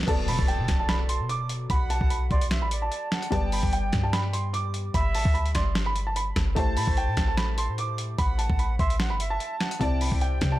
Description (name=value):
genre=hip hop, trap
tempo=148 BPM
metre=4/4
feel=half-time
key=B phrygian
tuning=A4 = 440 Hz
part: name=felt-muted upright piano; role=accompaniment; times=0.0-10.6 s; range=C3 to D5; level=-35 LUFS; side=left 3 dB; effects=none
part: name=clean 808-style bass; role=bass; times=0.0-10.6 s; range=G1 to C3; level=-27 LUFS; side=equal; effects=none
part: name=dusty soul sampler-style drum kit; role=drums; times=0.0-10.5 s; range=crash cymbal, finger snaps, hi-hat, kick drum, rim click, snare drum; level=-27 LUFS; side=equal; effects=overdrive
part: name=dark concert grand piano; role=melody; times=0.1-10.6 s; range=G5 to D6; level=-31 LUFS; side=right 2 dB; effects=tape echo
part: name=reedy silver concert flute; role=second line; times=0.1-10.6 s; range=D5 to A5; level=-35 LUFS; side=right 3 dB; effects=tape echo
part: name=impact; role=sound effects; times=0.1-1.7 s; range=none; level=-36 LUFS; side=equal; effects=none
room=little or no reverb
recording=none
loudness=-23 LUFS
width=side -15 dB against mid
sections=0.1-10.6 A section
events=impact 0.1-1.7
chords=0.1 Bm7; 3.3 G; 6.6 Am7; 9.8 Cadd9